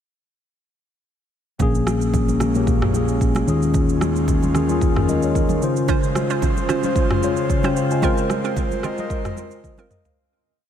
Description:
amapiano; 112 BPM; 4/4; swing 55% on 16ths; Bb minor; A4 = 440 Hz
mellow tine electric piano; accompaniment; 1.6-10.3 s; Bb2 to Ab5; -21 LUFS; left 3 dB
airy breathy pad; sustained chords; 1.6-10.2 s; Db3 to C5; -26 LUFS; right 1 dB; chorus
fingered electric bass; bass; 1.6-5.6 s; Bb1 to Eb2; -24 LUFS; right 1 dB
afro-pop drum kit; drums; 1.6-10.2 s; kick drum, rim click, shaker, toms; -23 LUFS; right 1 dB; vintage 12-bit sampler grit
congas; percussion; 1.6-9.9 s; -31 LUFS; right 5 dB
hollow square pluck; stabs; 5.9-9.9 s; C4 to C5; -28 LUFS; right 5 dB; chorus, tape echo
moderate huge ambient reverb, RT60 4.8 s; dreamy mix soaked in reverb; -17 LUFS; side -9 dB against mid
1.6-10.2 groove
fade-out 8.0-10.2; drum fill 9.6-10.2
1.6 Bbm7; 3.5 Eb9sus4; 5.6 Dbmaj7; 8.0 Ab69
| 1.60 2.14 2.67 3.21 | 3.74 4.28 4.82 5.35 | 5.89 6.42 6.96 7.49 | 8.03 8.56 9.10 9.64

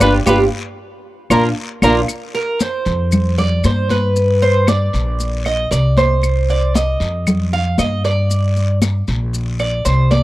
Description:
latin, Cuban son and guajira; 116 BPM; 4/4; straight; A4 = 440 Hz
warm trumpet; melody; 0.0-2.0 s; Bb4 to B4; -18 LUFS; equal
warm studio violin section; second line; 0.0-2.0 s; D4 to B4; -24 LUFS; left 1 dB
Cuban tres; arpeggios; 0.0-10.2 s; Bb3 to F5; -18 LUFS; right 2 dB
upright bass; bass; 0.0-10.2 s; G1 to G2; -16 LUFS; equal
claves; percussion; 0.0-9.9 s; -26 LUFS; left 4 dB
congas; percussion; 0.0-10.2 s; -20 LUFS; left 2 dB
guiro; percussion; 0.0-10.2 s; -33 LUFS; left 4 dB
maracas; percussion; 0.0-10.2 s; -28 LUFS; left 4 dB
little or no reverb; dry, close 1970s-style studio recording; -14 LUFS; side -16 dB against mid
0.0-2.1 A section; 2.1-10.2 B section
band accent 0.0-2.1; Cuban tres solo 2.1-10.2
0.0 G7; 1.0 Bb; 2.1 Fsus4; 3.1 G7/F; 4.2 G; 5.2 Bbadd9; 6.2 Cm; 7.3 Ebmaj9/F; 8.3 G5; 9.3 Bbadd9
| 0.01 0.53 1.05 1.57 | 2.09 2.60 3.12 3.64 | 4.16 4.68 5.20 5.72 | 6.24 6.75 7.27 7.79 | 8.30 8.82 9.34 9.85

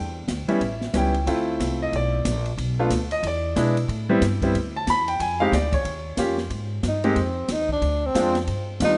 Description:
jazz, small-group swing and bop; 183 BPM; 4/4; swing 62% on 8ths; A4 = 440 Hz
clear baby grand piano; accompaniment; 0.0-9.0 s; Eb3 to B5; -26 LUFS; equal
upright bass; bass; 0.0-9.0 s; A1 to B2; -29 LUFS; equal
open jazz drum kit; drums; 0.3-8.9 s; hi-hat, kick drum, ride cymbal, snare drum; -33 LUFS; equal
breathy tenor saxophone; melody; 6.9-9.0 s; C4 to Eb4; -26 LUFS; equal
moderate plate reverb, RT60 1.9 s, small room ambience; rough home demo mix, nothing above 10.9 kHz; -24 LUFS; mono
0.0-6.5 A section; 6.5-9.0 A section
tenor saxophone solo 6.5-9.0
0.0 Em7; 0.6 A7; 1.3 Dm7; 2.6 Bm7b5; 3.2 E7; 3.9 Am7; 5.2 Fm7; 5.9 Eb9; 6.5 Abmaj7; 7.8 Dm7b5
0.29 0.61 0.94 | 1.27 1.60 1.92 2.25 | 2.58 2.91 3.23 3.56 | 3.89 4.22 4.55 4.88 | 5.20 5.53 5.86 6.19 | 6.52 6.84 7.17 7.50 | 7.83 8.16 8.49 8.81

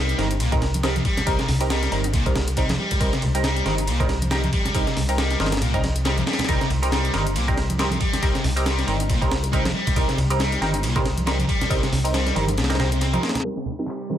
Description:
breakbeat, breaks; 138 BPM; 4/4; swing 57% on 16ths; C minor; A4 = 444 Hz
thick fuzz guitar; riff; 0.0-14.2 s; Bb2 to C4; -26 LUFS; left 1 dB; distortion, low-pass filter, dub echo
band-passed chord stab; stabs; 0.0-14.2 s; G3 to Bb4; -26 LUFS; right 2 dB; phaser, wide subtle chorus, dub echo
dark detuned saw bass; bass; 0.0-13.2 s; G1 to C2; -24 LUFS; equal; tube saturation
punchy analog drum machine; drums; 0.1-14.1 s; handclaps, hi-hat; -35 LUFS; left 4 dB; overdrive
breakbeat sampler-style drum kit; drums; 0.2-14.2 s; hi-hat, kick drum, ride cymbal, snare drum; -25 LUFS; equal; low-pass filter on cymbals, low-pass filter on kick, low-pass filter on snare, low-pass filter on hats
bongos and congas; percussion; 0.2-14.2 s; -31 LUFS; right 2 dB
light reverb, digital ambience; low-pass filter; -19 LUFS; side -10 dB against mid
0.0-13.4 A section
0.0 Cm7
0.40 0.84 | 1.27 1.71 2.14 2.58 | 3.01 3.44 3.88 4.32 | 4.75 5.18 5.62 6.05 | 6.49 6.92 7.36 7.79 | 8.23 8.66 9.10 9.53 | 9.97 10.40 10.84 11.27 | 11.71 12.14 12.58 13.01 | 13.45 13.88

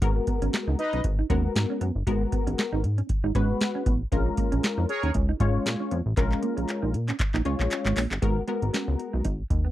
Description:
early-eighties boogie funk; 117 BPM; 4/4; swing 56% on 16ths; G# dorian; A4 = 440 Hz
funky polysynth comp; accompaniment; 0.0-9.2 s; G#3 to C#5; -29 LUFS; left 3 dB; chorus
chorused synth bass; bass; 0.0-9.7 s; G1 to A#2; -26 LUFS; equal
booming analog drum machine; drums; 0.0-9.7 s; handclaps, hi-hat, kick drum, snare drum; -27 LUFS; equal
mellow electric guitar; riff; 0.2-9.7 s; G#3 to D#4; -32 LUFS; right 7 dB; lush chorus
analog synth brass; second line; 0.8-1.0, 4.9-5.1 s; D#4 to D#5; -28 LUFS; equal; chorus
little or no reverb; dry, close 1970s-style studio recording; -24 LUFS; side -14 dB against mid
0.0-8.2 A section; 8.2-9.7 B section
drum fill 6.2-8.2
0.0 G#m9; 4.1 A#m7; 8.2 G#m9
| 0.02 0.53 1.04 1.56 | 2.07 2.58 3.10 3.61 | 4.12 4.63 5.15 5.66 | 6.17 6.68 7.20 7.71 | 8.22 8.74 9.25

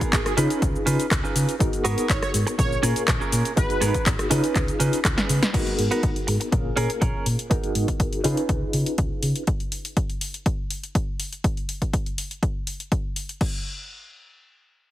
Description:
filtered disco house; 122 BPM; 4/4; straight; G# dorian; A4 = 440 Hz
bright reed electric piano; accompaniment; 0.0-9.4 s; A#3 to B4; -27 LUFS; equal; overdrive, fast tremolo, phaser, sidechain pumping, low-pass filter
direct-recorded clean electric guitar; riff; 0.0-7.3 s; B3 to B4; -29 LUFS; right 5 dB; sidechain pumping, low-pass filter
hollow-body short-scale fingered electric bass; bass; 0.0-9.3 s; G#1 to C#3; -25 LUFS; equal; tube saturation, sidechain pumping, low-pass filter
electronic kick drum; drums; 0.0-13.5 s; -25 LUFS; equal
house drum kit; drums; 0.0-13.5 s; crash cymbal, handclaps, hi-hat, rim click, shaker, snare drum; -28 LUFS; left 1 dB; sidechain pumping on hats, sidechain pumping on perc, sidechain pumping on cymbals
analog synth brass; melody; 0.1-4.1 s; G#4 to C#5; -31 LUFS; right 2 dB; chorus, sidechain pumping, low-pass filter, digital delay
light reverb, digital ambience; heavily compressed radio sound; -21 LUFS; side -14 dB against mid
0.0-5.5 A section; 5.5-13.4 B section; 13.4-14.9 C section
drop 0.0-5.5; drum fill 5.2-5.5
0.4 C#9; 1.6 G#m9; 2.6 A#m7; 3.6 G#m9; 4.3 C#9; 5.5 G#m9; 6.5 A#m7; 7.5 G#m9; 8.2 C#9; 9.5 N.C.
0.13 0.62 1.11 | 1.60 2.10 2.59 3.08 | 3.57 4.06 4.55 5.05 | 5.54 6.03 6.52 7.01 | 7.51 8.00 8.49 8.98 | 9.47 9.96 10.46 10.95 | 11.44 11.93 12.42 12.92 | 13.41

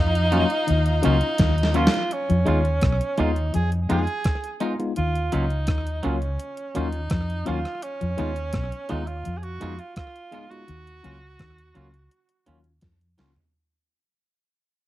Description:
lovers rock reggae; 84 BPM; 4/4; straight; Eb minor; A4 = 440 Hz
clear tenor saxophone; melody; 0.0-12.8 s; Db4 to Ab4; -28 LUFS; right 1 dB; tape echo
warm studio string section; second line; 0.0-2.1 s; F4 to Bb5; -34 LUFS; left 2 dB
electric guitar at the edge of break-up; riff; 0.0-13.3 s; Cb3 to F3; -31 LUFS; left 4 dB
vintage muted fingered electric bass; bass; 0.0-13.4 s; Cb2 to F2; -24 LUFS; equal
gated 80s digital drum machine; drums; 0.2-13.5 s; hi-hat, kick drum, rim click, snare drum, toms; -23 LUFS; equal; gated reverb, gated reverb snare, overdrive, slapback echo
tine electric piano; accompaniment; 0.3-13.3 s; Gb3 to F4; -27 LUFS; left 3 dB; medium stereo tremolo
twangy electric guitar; stabs; 0.3-13.3 s; Gb3 to F4; -31 LUFS; right 3 dB
little or no reverb; dry, close 1970s-style studio recording; -21 LUFS; side -15 dB against mid
0.0-2.1 A section; 2.1-13.5 B section
drum fill 1.4-2.1, 12.8-13.5; fade-out 2.1-13.5
0.0 Ebm9; 2.1 Fm7b5; 5.0 Ebm9; 7.8 Fm7b5; 10.7 Ebm9
0.68 1.39 | 2.11 2.82 3.54 4.25 | 4.96 5.68 6.39 7.11 | 7.82 8.54 9.25 9.97 | 10.68 11.39 12.11 12.82

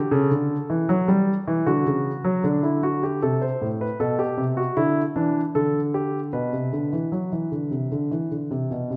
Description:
classical, baroque-style two-part invention for grand piano; 77 BPM; 4/4; straight; D major; A4 = 438 Hz
dark grand piano; solo; 0.0-9.0 s; A2 to C5; -24 LUFS; equal
wet recital hall reverb, RT60 1.7 s; -24 LUFS; mono
0.0-3.2 A section; 3.2-9.0 B section
0.1 A7(no3); 1.7 D; 3.2 Am7; 4.8 Dsus2; 5.5 D5; 6.3 Bmadd11
| 0.12 0.89 1.67 2.44 | 3.23 4.00 4.77 5.55 | 6.33 7.12 7.92 8.71

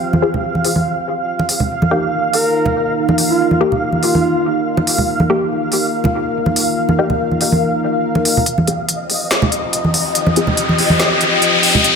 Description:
deep dubstep; 142 BPM; 4/4; swing 54% on 16ths, half-time; A4 = 437 Hz
dark analog pad; sustained chords; 0.0-12.0 s; Eb4 to G5; -20 LUFS; left 1 dB; chorus
flickering grainy texture; texture; 0.0-12.0 s; Eb5 to F5; -21 LUFS; right 1 dB; built-in reverb
congas; percussion; 0.1-11.8 s; -19 LUFS; right 1 dB
filtered dub chord stab; stabs; 0.2-10.5 s; Bb3 to Ab4; -21 LUFS; left 3 dB; phaser, dub echo
deep house drum kit; drums; 0.6-11.9 s; hi-hat, snare drum; -18 LUFS; equal
breathy flute-like synth lead; melody; 2.3-4.4 s; F4 to Bb4; -19 LUFS; equal; chorus, dub echo
riser; sound effects; 9.6-12.0 s; -16 LUFS; left 2 dB
moderate echo chamber reverb, RT60 1.5 s, digital ambience; -13 LUFS; side -6 dB against mid
0.0-8.5 A section; 8.5-12.0 B section
build-up 8.5-12.0; riser 9.6-12.0
0.0 F5; 1.7 Eb5; 8.5 F5
| 0.01 0.44 0.86 1.28 | 1.70 2.13 2.55 2.97 | 3.39 3.82 4.24 4.66 | 5.08 5.51 5.93 6.35 | 6.77 7.20 7.62 8.04 | 8.46 8.89 9.31 9.73 | 10.15 10.58 11.00 11.42 | 11.84

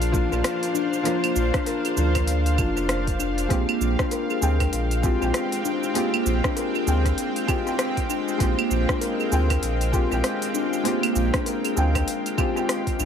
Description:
organic downtempo; 98 BPM; 4/4; swing 60% on 16ths; A4 = 440 Hz
felt-muted upright piano; accompaniment; 0.0-13.1 s; F3 to G5; -28 LUFS; left 2 dB; sidechain pumping, tape echo
bowed-like drone; sustained chords; 0.0-13.1 s; Ab3 to G5; -29 LUFS; equal; built-in reverb, sidechain pumping
steel tongue drum; arpeggios; 0.0-13.1 s; Bb3 to Bb4; -27 LUFS; left 2 dB; dub echo
warm sub bass; bass; 0.0-13.1 s; F1 to D2; -24 LUFS; right 1 dB; sidechain pumping
organic electronic drum kit; drums; 0.0-13.1 s; cabasa, claves, hi-hat, rim click; -29 LUFS; right 1 dB; overdrive, tape echo
electronic kick drum; drums; 0.1-13.0 s; -26 LUFS; right 1 dB; overdrive
moderate plate reverb, RT60 2.2 s; echo-heavy mix; -21 LUFS; side -8 dB against mid
0.0-13.1 A section
0.0 Bb; 3.5 Fmadd9/Bb
0.44 | 1.05 1.67 2.28 2.89 | 3.50 4.12 4.73 5.34 | 5.95 6.56 7.18 7.79 | 8.40 9.01 9.62 10.24 | 10.85 11.46 12.07 12.69

